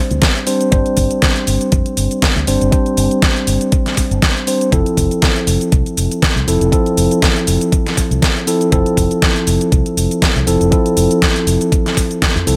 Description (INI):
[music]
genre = nu-disco, nu disco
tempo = 120 BPM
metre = 4/4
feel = swing 55% on 16ths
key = unclear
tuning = A4 = 440 Hz
[part]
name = mellow tine electric piano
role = accompaniment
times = 0.0-12.6 s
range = F3 to C5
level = -19 LUFS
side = equal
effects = sidechain pumping, dub echo
[part]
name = fingered electric bass with an envelope filter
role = bass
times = 0.1-12.6 s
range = F1 to F2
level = -20 LUFS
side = equal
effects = none
[part]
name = pop drum kit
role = drums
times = 0.1-12.6 s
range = cabasa, hi-hat, snare drum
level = -20 LUFS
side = equal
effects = overdrive
[part]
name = electronic kick drum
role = drums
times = 0.2-12.3 s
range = none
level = -18 LUFS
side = equal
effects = overdrive
[sound]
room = digital ambience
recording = none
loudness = -15 LUFS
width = mono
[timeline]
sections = 0.0-12.6 A section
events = none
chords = 0.0 Gsus4; 4.7 Fmaj7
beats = 0.22 | 0.72 1.22 1.72 2.22 | 2.72 3.22 3.72 4.22 | 4.72 5.22 5.72 6.22 | 6.72 7.22 7.72 8.22 | 8.72 9.22 9.72 10.22 | 10.72 11.22 11.72 12.22